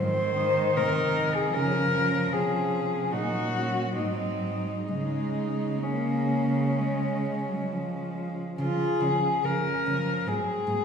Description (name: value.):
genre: classical, lyrical piece for cello ensemble.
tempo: 62-77 BPM.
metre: 4/4.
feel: rubato.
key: Db major.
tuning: A4 = 440 Hz.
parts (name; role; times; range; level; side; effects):
dark cello; melody; 0.0-10.8 s; Db4 to C5; -28 LUFS; left 3 dB; none.
rich cello; second line; 0.0-10.8 s; Ab3 to F4; -34 LUFS; right 5 dB; none.
warm cello; accompaniment; 0.0-10.8 s; Eb3 to Bb3; -32 LUFS; left 1 dB; none.
warm cello; bass; 0.0-10.8 s; Ab2 to Db3; -31 LUFS; right 2 dB; none.
room: wet recital hall reverb, RT60 1.3 s.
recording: recorded in a church or concert hall.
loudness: -24 LUFS.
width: side -6 dB against mid.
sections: 0.0-8.6 A section; 8.6-10.8 B section.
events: none.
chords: 0.0 Ab; 1.5 Db; 3.1 Gb/Bb; 4.0 Ab7; 4.9 Db; 10.3 Ab9.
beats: 0.76 | 1.55 2.33 3.13 3.97 | 4.88 5.84 6.80 7.72 | 8.60 9.45 10.28.